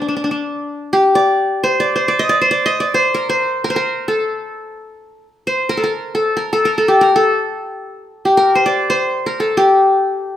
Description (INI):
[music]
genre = Arabic maqam ensemble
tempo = free time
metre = none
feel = none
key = D maqam hijaz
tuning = A4 = 437 Hz
[part]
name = qanun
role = solo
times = 0.0-10.4 s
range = D4 to Eb5+25c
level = -14 LUFS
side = left 1 dB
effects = none
[sound]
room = moderate large studio reverb, RT60 1.0 s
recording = band playing live in one room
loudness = -13 LUFS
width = side -11 dB against mid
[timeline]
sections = 0.7-10.4 A section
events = none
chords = none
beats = free time